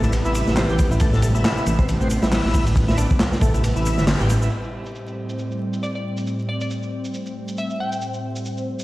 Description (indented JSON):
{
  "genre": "breakbeat, breaks",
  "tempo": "137 BPM",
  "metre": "4/4",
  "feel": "swing 57% on 16ths",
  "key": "A minor",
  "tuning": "A4 = 440 Hz",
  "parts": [
    { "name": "lush unison pad", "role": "sustained chords", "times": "0.0-8.8 s", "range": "A2 to C4", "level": "-27 LUFS", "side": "equal", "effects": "chorus, phaser, vintage 12-bit sampler grit, sidechain pumping" },
    { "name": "bright tonewheel organ", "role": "riff", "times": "0.0-4.5 s", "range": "A3 to A4", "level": "-27 LUFS", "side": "equal", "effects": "overdrive, chorus vibrato, slow rotary speaker, dub echo" },
    { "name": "dark detuned saw bass", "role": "bass", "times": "0.0-4.5 s", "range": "G1 to A1", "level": "-20 LUFS", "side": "equal", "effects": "tube saturation" },
    { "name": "crunchy breakbeat drum kit", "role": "drums", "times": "0.0-4.4 s", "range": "hi-hat, kick drum, ride cymbal, snare drum", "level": "-22 LUFS", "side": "equal", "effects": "none" },
    { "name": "electronic shaker and handclaps", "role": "drums", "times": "0.0-8.8 s", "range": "none", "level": "-33 LUFS", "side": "equal", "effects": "low-pass filter on perc, low-pass filter on snare, low-pass filter on room" },
    { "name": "glassy wavetable pluck", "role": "melody", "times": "5.8-8.2 s", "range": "D5 to G5", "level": "-31 LUFS", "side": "left 1 dB", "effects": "chorus, AM radio sound, cassette tape, dub echo" }
  ],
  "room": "moderate lush hall reverb, RT60 2.2 s",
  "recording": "played on a big sound system in a bare room, large studio reverb, vinyl crackle",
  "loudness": "-19 LUFS",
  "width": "side -17 dB against mid",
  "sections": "0.0-4.5 A section; 4.5-8.8 B section",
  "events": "kick drops out 3.6-4.5; band accent 4.1; filter sweep on drum 4.5-8.8",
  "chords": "0.0 Am7",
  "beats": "0.13 0.57 | 1.01 1.45 1.89 2.32 | 2.76 3.20 3.64 4.08 | 4.51 4.95 5.39 5.83 | 6.26 6.70 7.14 7.58 | 8.02 8.46"
}